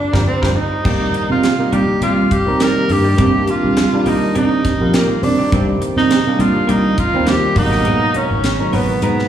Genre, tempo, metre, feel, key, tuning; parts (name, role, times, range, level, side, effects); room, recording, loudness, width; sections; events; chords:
electric jazz fusion; 103 BPM; 4/4; swing 55% on 16ths; A4 = 440 Hz
warm tenor saxophone; melody; 0.0-9.3 s; Bb3 to Bb4; -18 LUFS; right 1 dB; slapback echo, tape echo
barky tine electric piano; accompaniment; 0.1-9.3 s; Cb3 to D5; -19 LUFS; right 1 dB; overdrive, phaser, slapback echo
clean electric guitar; stabs; 0.1-9.2 s; Bb3 to D5; -26 LUFS; left 2 dB; analog chorus, slapback echo, tape echo
fingered electric bass; bass; 0.1-9.3 s; G1 to C3; -17 LUFS; right 1 dB
crisp fusion drum kit; drums; 0.1-9.3 s; crash cymbal, hi-hat, kick drum, snare drum; -20 LUFS; right 1 dB
light reverb; live gig heard through the venue's PA, recital hall reverb, small room ambience; -13 LUFS; side -10 dB against mid
0.9-9.3 A section
drum fill 0.0-0.9; tine electric piano fill 0.0-0.9; band accent 0.0-0.9
0.0 Gm7; 0.9 Cm9; 7.6 Abm9